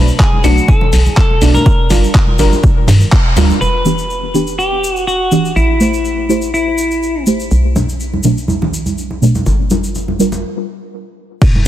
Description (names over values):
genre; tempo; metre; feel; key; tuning
deep house; 123 BPM; 4/4; swing 53% on 16ths; E minor; A4 = 441 Hz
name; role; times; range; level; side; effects
clean electric guitar; melody; 0.0-7.2 s; E4 to B4; -17 LUFS; left 1 dB; digital delay
deep mellow chord stab; stabs; 0.0-11.7 s; B2 to C5; -16 LUFS; right 1 dB; chorus, ping-pong delay
hollow knocking FM bass; bass; 0.0-10.4 s; E1 to G2; -15 LUFS; equal; sidechain pumping
tube shaker; percussion; 0.1-11.7 s; none; -27 LUFS; left 2 dB; none
dusty soul sampler-style drum kit; drums; 0.2-3.5, 11.4-11.5 s; crash cymbal, handclaps, hi-hat; -21 LUFS; left 1 dB; low-pass filter on hats, low-pass filter on snare, low-pass filter on cymbals
electronic kick drum; drums; 0.2-3.2, 11.4-11.5 s; none; -11 LUFS; equal; overdrive
congas; percussion; 0.3-3.6, 7.8-11.6 s; none; -21 LUFS; right 3 dB; none
sub drop; sound effects; 11.4-11.7 s; none; -18 LUFS; equal; none
room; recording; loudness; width
light reverb; dense, heavily limited modern master; -10 LUFS; side -12 dB against mid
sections
0.0-3.6 A section; 3.6-11.4 B section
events
band accent 3.1; break 10.4-11.4; impact 11.4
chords
0.0 Bm7; 1.7 Gm7; 3.6 Em7; 5.6 Am7; 7.5 Bm7; 9.5 Gm7